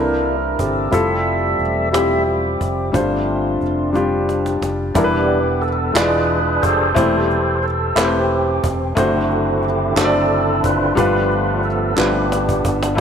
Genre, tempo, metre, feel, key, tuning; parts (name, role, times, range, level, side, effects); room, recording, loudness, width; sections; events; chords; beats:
slow gospel; 60 BPM (dotted quarters); 6/8; straight; A4 = 443 Hz
warm grand piano; accompaniment; 0.0-13.0 s; G2 to D5; -19 LUFS; left 2 dB
mellow French horn section; sustained chords; 0.0-4.9 s; E3 to E5; -30 LUFS; equal
tonewheel organ; sustained chords; 0.0-13.0 s; B2 to E5; -20 LUFS; right 2 dB; fast rotary speaker, overdrive
fingered electric bass; bass; 0.0-13.0 s; E1 to C2; -24 LUFS; right 1 dB
cajon; drums; 0.3-13.0 s; -23 LUFS; right 1 dB
group handclap; percussion; 6.0-12.3 s; -27 LUFS; right 4 dB
moderate concert hall reverb, RT60 2.2 s; -15 LUFS; side -7 dB against mid
0.0-5.0 A section; 5.0-13.0 B section
tonewheel organ solo 0.0-5.0, 5.0-13.0; drum fill 3.9-5.0, 12.0-13.0
0.0 C13; 0.9 Fmaj9; 2.9 G7sus4; 5.0 Em7; 6.0 E7b9; 7.0 Am7/E; 9.0 D7/F#; 11.0 G7
| 0.92 1.93 | 2.94 3.95 | 4.95 5.96 | 6.96 7.97 | 8.97 9.97 | 10.98 11.98 | 12.98